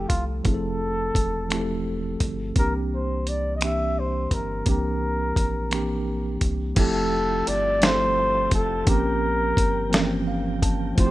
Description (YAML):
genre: slow six-eight R&B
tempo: 57 BPM (dotted quarters)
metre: 6/8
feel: straight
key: F major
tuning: A4 = 440 Hz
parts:
  - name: mellow flugelhorn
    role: melody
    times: 0.0-11.1 s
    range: F4 to E5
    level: -26 LUFS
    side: equal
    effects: slapback echo
  - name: tine electric piano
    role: accompaniment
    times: 0.0-11.1 s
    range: Eb3 to A5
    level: -27 LUFS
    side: right 2 dB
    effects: overdrive, medium stereo tremolo
  - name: rubbery square bass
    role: bass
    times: 0.0-11.1 s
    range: E1 to C2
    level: -30 LUFS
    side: equal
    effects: none
  - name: dusty soul sampler-style drum kit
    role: drums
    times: 0.1-11.1 s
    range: crash cymbal, finger snaps, hi-hat, kick drum, snare drum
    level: -22 LUFS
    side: equal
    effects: none
  - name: tonewheel organ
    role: sustained chords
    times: 6.8-11.1 s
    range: Db3 to A4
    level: -37 LUFS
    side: equal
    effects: fast rotary speaker
room: digital ambience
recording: rough home demo mix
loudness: -21 LUFS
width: side -16 dB against mid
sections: 0.0-6.8 A section; 6.8-11.1 B section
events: tine electric piano fill 9.9-11.0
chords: 0.0 Fmaj7; 2.6 C9; 6.8 Fmaj9; 8.9 Bbm6